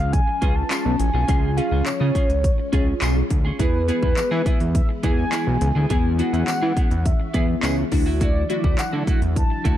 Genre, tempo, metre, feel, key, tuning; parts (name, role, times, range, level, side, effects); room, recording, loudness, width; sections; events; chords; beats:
dance-pop; 104 BPM; 4/4; straight; A4 = 440 Hz
mellow horn-like synth lead; melody; 0.0-9.8 s; B4 to A5; -27 LUFS; left 1 dB; chorus, ping-pong delay
ensemble organ-string; sustained chords; 0.0-9.8 s; D3 to E4; -30 LUFS; equal; ensemble chorus, sidechain pumping
clean electric guitar; riff; 0.0-9.8 s; A3 to G#4; -30 LUFS; right 3 dB; lush chorus
fat analog bass; bass; 0.0-9.8 s; A1 to E3; -22 LUFS; equal; sidechain pumping
house drum kit; drums; 0.1-9.8 s; handclaps, hi-hat, kick drum; -22 LUFS; equal
glassy wavetable pluck; accompaniment; 0.4-9.8 s; B3 to B4; -28 LUFS; left 2 dB; chorus, sidechain pumping
tambourine; percussion; 0.7-8.9 s; -36 LUFS; left 8 dB
little or no reverb; dark, warm production; -18 LUFS; side -12 dB against mid
0.0-9.8 A section
0.0 C#; 3.6 E; 7.9 Dadd9
0.13 0.71 | 1.29 1.86 2.44 3.02 | 3.59 4.17 4.75 5.33 | 5.90 6.48 7.06 7.63 | 8.21 8.79 9.36